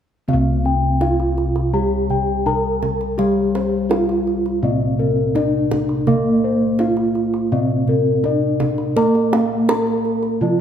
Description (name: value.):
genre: Javanese gamelan.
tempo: 83 BPM.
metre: 4/4.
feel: straight.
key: C slendro.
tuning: A4 = 440 Hz.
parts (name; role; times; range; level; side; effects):
gamelan-type bronze metallophone; melody; 0.3-10.6 s; Bb3-40c to Bb4-40c; -21 LUFS; right 1 dB; none.
gamelan-type bronze metallophone; accompaniment; 0.3-10.6 s; C3 to Bb3-40c; -21 LUFS; equal; none.
gamelan-type bossed gongs; arpeggios; 0.3-10.6 s; Bb4-40c to Bb5-40c; -24 LUFS; left 5 dB; none.
gamelan-type bossed gongs; bass; 0.3-10.6 s; C2 to Bb4-40c; -23 LUFS; right 1 dB; none.
kendang; percussion; 0.3-10.3 s; none; -26 LUFS; right 4 dB; none.
room: moderate scoring stage reverb, RT60 2.0 s.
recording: dark, warm production.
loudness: -16 LUFS.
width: side -8 dB against mid.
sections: 0.3-10.6 A section.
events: none.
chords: none.